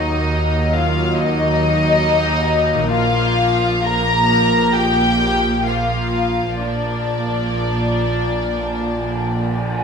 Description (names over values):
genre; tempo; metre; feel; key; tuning
cinematic; 61-72 BPM; 4/4; rubato; unclear; A4 = 440 Hz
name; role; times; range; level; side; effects
warm studio violin section; melody; 0.0-9.8 s; D5 to Bb5; -20 LUFS; left 3 dB; none
rich studio violin section; second line; 0.0-9.8 s; D4 to Bb4; -22 LUFS; left 3 dB; none
warm studio viola section; accompaniment; 0.0-9.8 s; F3 to A#3; -24 LUFS; equal; none
rich studio double bass section; bass; 0.0-9.8 s; Bb1 to D#2; -23 LUFS; right 2 dB; none
warm studio cello section; bass; 0.0-9.8 s; Bb2 to D#3; -24 LUFS; right 3 dB; none
concert harp; arpeggios; 2.7-6.8 s; Bb2 to F4; -29 LUFS; left 9 dB; none
room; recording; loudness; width
wet recital hall reverb, RT60 1.4 s; none; -15 LUFS; side -6 dB against mid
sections
0.0-9.8 A section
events
none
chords
0.0 D#m; 2.9 Bb